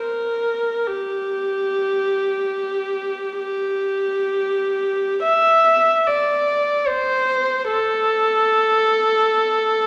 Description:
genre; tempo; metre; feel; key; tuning
classical, free, expressive piece for unaccompanied viola; free time; none; none; unclear; A4 = 440 Hz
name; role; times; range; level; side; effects
warm viola; solo; 0.0-9.9 s; G4 to E5; -20 LUFS; equal; none
room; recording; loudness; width
moderate recital hall reverb, RT60 1.7 s; none; -20 LUFS; mono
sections
0.0-9.9 A section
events
none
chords
none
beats
free time

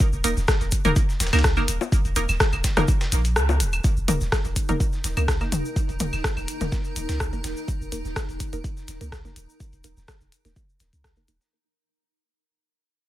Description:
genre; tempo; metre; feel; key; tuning
minimal techno; 125 BPM; 4/4; swing 53% on 16ths; unclear; A4 = 441 Hz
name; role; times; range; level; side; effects
dusty soul sampler-style drum kit; drums; 0.0-11.5 s; hi-hat, snare drum; -37 LUFS; left 1 dB; high-pass filter on snare, high-pass filter on hats
electronic kick drum; drums; 0.0-11.1 s; none; -24 LUFS; equal; none
tube shaker; percussion; 0.0-11.5 s; none; -36 LUFS; left 2 dB; none
punchy sub bass; bass; 0.1-11.4 s; Eb1 to Db2; -25 LUFS; equal; sidechain pumping
wavetable chord stab; stabs; 0.2-11.4 s; Bb3 to Bb4; -29 LUFS; right 2 dB; tape echo
minimal click drum kit; drums; 0.2-11.4 s; hi-hat, rim click; -26 LUFS; left 1 dB; none
electronic toms, claves and bongos; percussion; 0.8-6.7 s; none; -28 LUFS; left 3 dB; overdrive, tape echo
granular cloud pad; texture; 4.5-11.5 s; Eb4 to Bb5; -36 LUFS; right 1 dB; built-in reverb, sidechain pumping
room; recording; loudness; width
digital ambience; none; -21 LUFS; side -14 dB against mid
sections
0.0-3.8 A section; 3.8-11.5 B section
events
drop 0.0-3.8; kick drops out 3.4-3.8; band accent 3.4; fade-out on ambient pad 3.8-11.5; fade-out 3.8-11.5; filter sweep on synth stab 3.8-11.5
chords
0.0 Eb5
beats
| 0.00 0.48 0.96 1.44 | 1.92 2.40 2.88 3.36 | 3.84 4.32 4.80 5.28 | 5.76 6.24 6.72 7.20 | 7.68 8.16 8.64 9.12 | 9.60 10.08 10.56 11.04

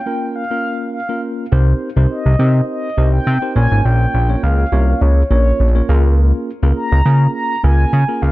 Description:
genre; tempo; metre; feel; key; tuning
dance-pop; 103 BPM; 4/4; straight; unclear; A4 = 440 Hz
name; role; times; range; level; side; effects
mellow horn-like synth lead; melody; 0.0-8.3 s; Db5 to Bb5; -22 LUFS; equal; chorus, tape echo
mellow tine electric piano; accompaniment; 0.1-8.3 s; Bb3 to Db5; -22 LUFS; left 1 dB; medium stereo tremolo, low-pass filter
fat analog bass; bass; 1.5-8.3 s; Ab1 to Db3; -12 LUFS; equal; none
room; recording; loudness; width
little or no reverb; none; -13 LUFS; side -18 dB against mid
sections
0.0-1.5 A section; 1.5-8.3 B section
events
build-up 0.0-1.5; drop 1.5-8.3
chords
0.0 Bbm; 1.5 Cm7; 3.6 Bbm; 5.9 Db6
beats
0.36 0.94 | 1.52 2.10 2.69 3.27 | 3.85 4.43 5.02 5.60 | 6.18 6.76 7.35 7.93

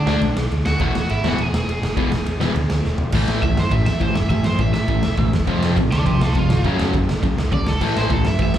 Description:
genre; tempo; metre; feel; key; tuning
punk rock; 205 BPM; 4/4; straight; unclear; A4 = 441 Hz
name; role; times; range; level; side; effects
overdriven semi-hollow guitar; melody; 0.0-8.6 s; D4 to G#5; -26 LUFS; right 2 dB; slapback echo, ping-pong delay
sludgy distorted guitar; riff; 0.1-8.5 s; E2 to D4; -22 LUFS; left 5 dB; overdrive, slapback echo
tight distorted guitar; riff; 0.1-8.5 s; E2 to D4; -26 LUFS; right 9 dB; distortion, slapback echo
picked electric bass; bass; 0.1-8.6 s; E1 to A2; -22 LUFS; equal; none
raw garage drum kit; drums; 0.1-8.6 s; crash cymbal, kick drum, ride cymbal, snare drum, toms; -22 LUFS; right 1 dB; none
room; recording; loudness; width
small room ambience; live gig heard through the venue's PA, club reverb; -17 LUFS; side -11 dB against mid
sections
0.0-3.1 A section; 3.1-8.6 B section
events
drum fill 2.8; overdriven electric guitar solo 3.1-8.6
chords
0.0 D; 0.8 E; 3.1 A5; 5.3 F; 6.6 F#5; 7.8 A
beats
0.21 0.51 | 0.80 1.09 1.39 1.68 | 1.97 2.26 2.55 2.85 | 3.14 3.43 3.72 4.01 | 4.31 4.60 4.89 5.18 | 5.48 5.77 6.06 6.36 | 6.65 6.94 7.24 7.53 | 7.82 8.12 8.41

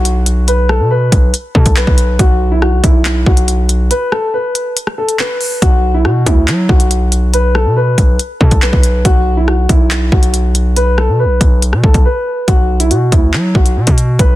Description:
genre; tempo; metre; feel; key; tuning
hip hop, drill; 140 BPM; 4/4; half-time; unclear; A4 = 440 Hz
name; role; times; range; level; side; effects
dark grand piano; melody; 0.0-14.4 s; E4 to B4; -16 LUFS; equal; low-pass filter
distorted 808-style bass; bass; 0.0-14.4 s; B1 to F#3; -12 LUFS; equal; distortion
drill drum kit; drums; 0.1-14.3 s; handclaps, hi-hat, kick drum, rim click; -12 LUFS; equal; none
room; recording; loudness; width
little or no reverb; dense, heavily limited modern master; -9 LUFS; side -15 dB against mid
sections
0.0-12.5 A section; 12.5-14.4 B section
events
break 3.9-5.6, 12.1-12.5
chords
0.0 B5; 12.5 Bm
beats
0.05 | 0.48 0.91 1.34 1.76 | 2.19 2.62 3.05 3.48 | 3.91 4.34 4.76 5.19 | 5.62 6.05 6.48 6.91 | 7.34 7.76 8.19 8.62 | 9.05 9.48 9.91 10.34 | 10.76 11.19 11.62 12.05 | 12.48 12.91 13.34 13.76 | 14.19

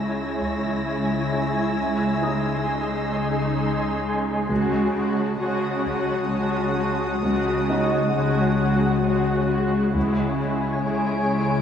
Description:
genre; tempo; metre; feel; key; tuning
cinematic, suspense film score; 66 BPM; 3/4; straight; C# harmonic minor; A4 = 440 Hz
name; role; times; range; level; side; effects
muted symphonic viola section; accompaniment; 0.0-11.6 s; G#3 to F#4; -25 LUFS; equal; none
flickering grainy texture; sustained chords; 0.0-11.6 s; E4 to B#5; -28 LUFS; equal; built-in reverb
muted symphonic cello section; bass; 0.0-11.6 s; C#3; -29 LUFS; right 1 dB; none
organ-like drone; drone; 0.0-11.6 s; C#2; -26 LUFS; left 3 dB; ensemble chorus, built-in reverb
felt-muted upright piano; texture; 0.0-11.6 s; D#4 to D#6; -32 LUFS; right 2 dB; none
muted studio violin section; texture; 0.0-11.6 s; C#5 to D7; -35 LUFS; left 1 dB; none
taiko ensemble; drums; 0.4-11.6 s; none; -35 LUFS; equal; none
muted symphonic double bass section; bass; 4.5-10.7 s; C#2; -32 LUFS; right 2 dB; none
room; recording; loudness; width
wet concert hall reverb, RT60 2.5 s; small room ambience; -20 LUFS; side -8 dB against mid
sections
0.0-11.6 A section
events
none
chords
0.0 C#m; 1.8 G#/C#; 4.5 F#madd9/C#; 10.0 C#m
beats
0.86 | 1.77 2.68 3.59 | 4.50 5.41 6.32 | 7.23 8.14 9.04 | 9.95 10.86

